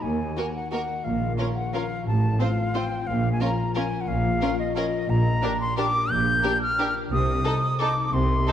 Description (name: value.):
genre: classical, orchestral ballroom waltz.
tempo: 178 BPM.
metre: 3/4.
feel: uneven beats, rubato.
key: G minor from 5.1 s.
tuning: A4 = 439 Hz.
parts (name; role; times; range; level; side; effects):
silver concert flute; second line; 0.0-8.5 s; Eb5 to G6; -27 LUFS; left 1 dB; none.
concert harp; arpeggios; 0.0-8.5 s; A2 to Eb5; -30 LUFS; left 7 dB; none.
bright symphonic double bass section; bass; 0.0-8.4 s; A1 to Eb2; -28 LUFS; right 2 dB; none.
rich studio cello section; bass; 0.0-8.4 s; Eb2 to C3; -29 LUFS; right 2 dB; none.
rich studio violin section; melody; 0.4-8.5 s; A4 to C5; -35 LUFS; left 1 dB; none.
rich studio violin section; second line; 0.4-8.5 s; F4 to A4; -34 LUFS; equal; none.
rich studio viola section; accompaniment; 0.4-8.5 s; Bb3 to Eb4; -34 LUFS; right 1 dB; none.
room: moderate scoring stage reverb, RT60 1.8 s.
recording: dark, warm production.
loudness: -22 LUFS.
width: side -10 dB against mid.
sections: 0.0-8.5 A section.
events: none.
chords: 0.0 Ebm; 1.1 Bbm; 2.1 F/A; 3.1 Bbm; 5.1 Gm/Bb; 7.1 Adim/C.